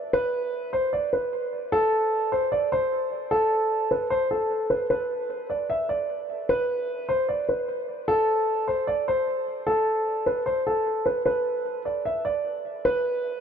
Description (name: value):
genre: hip hop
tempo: 151 BPM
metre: 4/4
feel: half-time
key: unclear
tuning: A4 = 439 Hz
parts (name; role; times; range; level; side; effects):
- dark concert grand piano; solo; 0.0-13.4 s; A4 to E5; -23 LUFS; equal; low-pass filter, tape echo
room: moderate huge ambient reverb, RT60 8.9 s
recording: dark, warm production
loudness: -23 LUFS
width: side -7 dB against mid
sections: 0.0-13.4 A section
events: none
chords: none